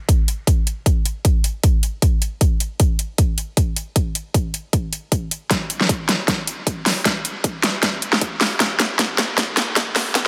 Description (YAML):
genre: future bass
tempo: 155 BPM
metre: 4/4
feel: swing 55% on 16ths, half-time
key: none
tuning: none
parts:
  - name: big-room dance drum kit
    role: drums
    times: 0.1-10.2 s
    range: hi-hat, snare drum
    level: -21 LUFS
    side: equal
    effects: overdrive
  - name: electronic kick drum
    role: drums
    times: 0.1-10.2 s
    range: none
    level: -21 LUFS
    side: equal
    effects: overdrive
room: light reverb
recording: high-pass filter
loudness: -20 LUFS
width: mono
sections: 0.0-10.3 A section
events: build-up 0.0-10.3; filter sweep 0.0-10.3; drum fill 5.5-10.3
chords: none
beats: 0.09 0.47 | 0.86 1.25 1.64 2.02 | 2.41 2.80 3.18 3.57 | 3.96 4.34 4.73 5.12 | 5.51 5.89 6.28 6.67 | 7.05 7.44 7.83 8.22 | 8.60 8.99 9.38 9.77 | 10.15